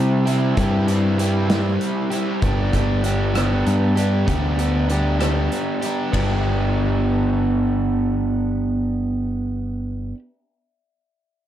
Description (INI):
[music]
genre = indie rock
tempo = 65 BPM (dotted quarters)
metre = 6/8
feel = straight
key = G major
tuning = A4 = 440 Hz
[part]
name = crunchy overdriven guitar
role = riff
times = 0.0-10.2 s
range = G3 to G4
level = -21 LUFS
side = right 1 dB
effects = none
[part]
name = growling picked electric bass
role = bass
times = 0.0-10.1 s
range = G1 to C3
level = -21 LUFS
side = equal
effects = overdrive
[part]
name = loose indie drum kit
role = drums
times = 0.3-6.3 s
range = hi-hat, kick drum, ride cymbal, rim click, snare drum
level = -26 LUFS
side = equal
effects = none
[sound]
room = moderate studio reverb, RT60 0.8 s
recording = dark, warm production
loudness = -18 LUFS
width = side -11 dB against mid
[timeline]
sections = 0.0-6.1 A section; 6.1-9.8 B section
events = none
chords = 0.0 C; 2.4 G